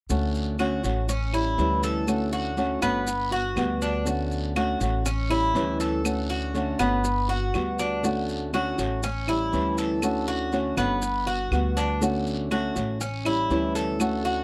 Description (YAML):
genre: latin, Cuban son and guajira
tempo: 121 BPM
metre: 4/4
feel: straight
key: D major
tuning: A4 = 438 Hz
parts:
  - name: flamenco guitar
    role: accompaniment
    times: 0.1-14.4 s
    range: D3 to F#4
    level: -29 LUFS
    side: equal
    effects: none
  - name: upright bass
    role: bass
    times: 0.1-14.4 s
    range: G1 to D2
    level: -32 LUFS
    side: equal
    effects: none
  - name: guiro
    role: percussion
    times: 0.1-14.4 s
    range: none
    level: -44 LUFS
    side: equal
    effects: none
  - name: maracas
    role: percussion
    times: 0.1-14.4 s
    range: none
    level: -40 LUFS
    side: equal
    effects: none
  - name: Cuban tres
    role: arpeggios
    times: 0.6-14.4 s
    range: B3 to A4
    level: -30 LUFS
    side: equal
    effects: none
  - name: claves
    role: percussion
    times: 0.6-14.2 s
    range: none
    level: -36 LUFS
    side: equal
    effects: none
room: little or no reverb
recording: dry, close 1970s-style studio recording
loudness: -26 LUFS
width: mono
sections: 0.1-14.4 A section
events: none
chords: 0.1 Dmaj7; 1.1 A7; 2.1 Dmaj7; 3.1 Gmaj7; 4.1 Dmaj7; 5.1 A7; 6.0 Dmaj7; 7.0 Gmaj7; 8.0 Dmaj7; 9.0 A7; 10.0 Dmaj7; 11.0 Gmaj7; 12.0 Dmaj7; 13.0 A7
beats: | 0.10 0.59 1.09 1.58 | 2.08 2.57 3.07 3.57 | 4.06 4.56 5.06 5.55 | 6.05 6.55 7.04 7.54 | 8.04 8.54 9.03 9.53 | 10.03 10.53 11.02 11.52 | 12.02 12.51 13.01 13.50 | 14.00